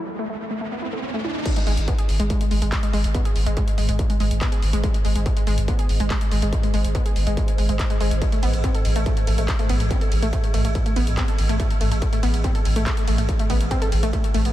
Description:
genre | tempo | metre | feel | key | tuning
driving peak-time techno | 142 BPM | 4/4 | straight | unclear | A4 = 440 Hz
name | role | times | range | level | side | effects
riser | sound effects | 0.0-1.5 s | none | -31 LUFS | right 2 dB | none
wide unison pluck | riff | 0.2-14.5 s | G#3 to A4 | -27 LUFS | left 1 dB | sidechain pumping, ping-pong delay
swarming drone | drone | 3.1-14.5 s | G#2 | -30 LUFS | equal | built-in reverb, sidechain pumping
electronic kick drum | drums | 1.5-14.2 s | none | -22 LUFS | equal | distortion
techno drum kit | drums | 1.5-14.5 s | crash cymbal, handclaps, hi-hat, ride cymbal | -32 LUFS | equal | low-pass filter on hats, low-pass filter on cymbals, low-pass filter on snare, low-pass filter on room
saturated sub bass | bass | 1.7-14.5 s | G#1 to A1 | -23 LUFS | equal | overdrive, sidechain pumping, low-pass filter
room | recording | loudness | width
light reverb | none | -19 LUFS | side -14 dB against mid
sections
0.0-1.5 A section; 1.5-14.5 B section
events
riser 0.0-1.5; drop 1.5-14.5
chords
0.0 A5; 1.5 N.C.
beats
0.19 0.61 1.03 | 1.46 1.88 2.30 2.72 | 3.15 3.57 3.99 4.41 | 4.84 5.26 5.68 6.10 | 6.53 6.95 7.37 7.79 | 8.22 8.64 9.06 9.48 | 9.91 10.33 10.75 11.18 | 11.60 12.02 12.44 12.87 | 13.29 13.71 14.13

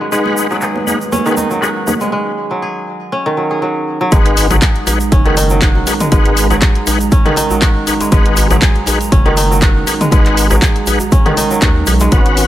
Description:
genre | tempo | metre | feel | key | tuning
afro house | 120 BPM | 4/4 | swing 54% on 16ths | G# minor | A4 = 436 Hz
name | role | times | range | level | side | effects
dark analog pad | sustained chords | 0.0-12.5 s | G#3 to A#5 | -22 LUFS | right 4 dB | chorus, sidechain pumping
kora | arpeggios | 0.0-12.5 s | D#3 to G#4 | -17 LUFS | right 1 dB | sidechain pumping, low-pass filter, digital delay
overdriven tonewheel organ | stabs | 0.1-12.5 s | C#4 to F#5 | -19 LUFS | left 3 dB | chorus vibrato, fast rotary speaker, sidechain pumping, low-pass filter, digital delay
tube shaker | percussion | 0.1-12.5 s | none | -24 LUFS | right 3 dB | none
congas | percussion | 0.3-2.1 s | none | -21 LUFS | right 4 dB | none
house drum kit | drums | 0.6-12.5 s | handclaps, hi-hat, toms | -19 LUFS | left 1 dB | low-pass filter on cymbals, low-pass filter on snare, low-pass filter on hats, low-pass filter on toms, low-pass filter on room
round analog bass | bass | 4.1-12.5 s | F#1 to D#2 | -15 LUFS | equal | sidechain pumping
electronic kick drum | drums | 4.1-12.2 s | none | -11 LUFS | equal | none
djembe | percussion | 4.4-12.5 s | none | -22 LUFS | equal | none
room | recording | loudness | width
digital ambience | none | -10 LUFS | side -13 dB against mid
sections
0.0-4.1 A section; 4.1-12.5 B section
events
break 2.1-4.1; drop 4.1-12.5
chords
0.0 G#m7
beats
| 0.12 0.62 1.12 1.62 | 2.12 2.62 3.12 3.62 | 4.12 4.62 5.12 5.62 | 6.12 6.62 7.12 7.62 | 8.12 8.62 9.12 9.62 | 10.12 10.62 11.12 11.62 | 12.12

